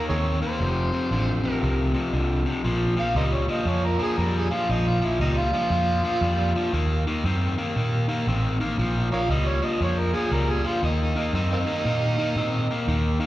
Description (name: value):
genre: electric blues shuffle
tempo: 117 BPM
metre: 4/4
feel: swing 63% on 8ths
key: Bb minor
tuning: A4 = 440 Hz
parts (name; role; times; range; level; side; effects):
- overdriven harmonica; melody; 0.0-13.0 s; Bb3 to F5; -28 LUFS; right 2 dB; slapback echo
- crunchy overdriven guitar; riff; 0.0-13.3 s; F2 to C4; -25 LUFS; left 2 dB; spring reverb, slapback echo
- vintage muted fingered electric bass; bass; 0.1-13.2 s; F1 to Bb2; -24 LUFS; equal; none
room: studio ambience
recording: live gig heard through the venue's PA, recital hall reverb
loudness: -21 LUFS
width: side -15 dB against mid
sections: 0.0-2.6 A section; 2.6-13.3 B section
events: harmonica solo 2.6-13.3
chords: 0.0 Eb5; 0.6 F; 2.6 Bbm; 6.7 Ebm; 8.8 Bbm; 10.8 Ebm